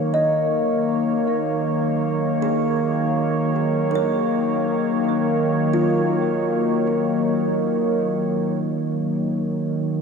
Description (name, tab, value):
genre	ambient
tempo	free time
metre	none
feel	none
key	Eb minor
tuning	A4 = 439 Hz
part	warm analog pad	sustained chords	0.0-10.0 s	Eb3 to Db5	-20 LUFS	equal	chorus
part	kalimba	arpeggios	0.1-8.1 s	F4 to Eb5	-27 LUFS	equal	tape echo
room	wet huge ambient reverb, RT60 7.6 s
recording	cassette tape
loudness	-19 LUFS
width	side -5 dB against mid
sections	0.0-8.6 A section; 8.6-10.0 B section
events	none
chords	0.0 Ebm7